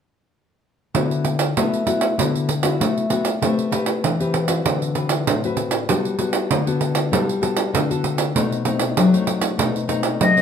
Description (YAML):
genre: samba and choro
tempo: 97 BPM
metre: 4/4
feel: straight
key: D major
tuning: A4 = 441 Hz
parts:
  - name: nylon-string guitar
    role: accompaniment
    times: 0.9-10.4 s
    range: A2 to B4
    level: -20 LUFS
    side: left 4 dB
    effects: none
  - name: pandeiro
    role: percussion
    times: 0.9-10.4 s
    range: none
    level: -21 LUFS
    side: right 6 dB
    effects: none
  - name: silver concert flute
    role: melody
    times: 10.2-10.4 s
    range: D#5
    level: -15 LUFS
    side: left 3 dB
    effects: none
room: wet studio reverb, RT60 0.8 s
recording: none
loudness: -18 LUFS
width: side -7 dB against mid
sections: 0.9-10.4 A section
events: none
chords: 0.9 D69; 3.4 Am9; 4.7 D6; 5.9 Gmaj9; 8.4 B7b9